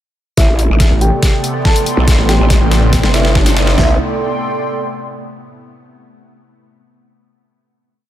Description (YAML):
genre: heavy wobble dubstep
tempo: 141 BPM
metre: 4/4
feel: half-time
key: A minor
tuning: A4 = 440 Hz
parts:
  - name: felt-muted upright piano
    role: melody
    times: 0.4-3.9 s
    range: E4 to A5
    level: -21 LUFS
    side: equal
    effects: digital delay
  - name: evolving wavetable pad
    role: sustained chords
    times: 1.0-4.0 s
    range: C3 to B3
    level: -23 LUFS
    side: right 1 dB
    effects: ensemble chorus, built-in reverb, sidechain pumping
  - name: growl bass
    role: bass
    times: 0.4-4.0 s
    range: G1 to B1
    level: -13 LUFS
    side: equal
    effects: distortion, chorus, overdrive
  - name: dubstep drum kit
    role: drums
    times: 0.4-3.9 s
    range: kick drum, snare drum, toms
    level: -13 LUFS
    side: equal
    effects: overdrive
  - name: dubstep drum kit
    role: drums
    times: 0.4-3.8 s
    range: hi-hat, snare drum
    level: -19 LUFS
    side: left 1 dB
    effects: overdrive, high-pass filter on snare, high-pass filter on hats
  - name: riser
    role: sound effects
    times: 1.6-3.8 s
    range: none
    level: -24 LUFS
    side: right 2 dB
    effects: none
  - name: airy breathy pad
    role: texture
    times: 0.4-5.4 s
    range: A4 to C6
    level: -22 LUFS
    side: right 1 dB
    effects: chorus, sidechain pumping
  - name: snarling distorted saw bass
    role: bass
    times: 0.9-3.0 s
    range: A1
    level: -13 LUFS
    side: equal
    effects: overdrive
room: little or no reverb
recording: none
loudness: -11 LUFS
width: side -12 dB against mid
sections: 0.4-3.8 build; 3.8-5.5 final chord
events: build-up 0.4-3.8; drum fill 0.4-3.8; riser 1.6-3.8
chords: 0.4 Amadd9; 3.8 Am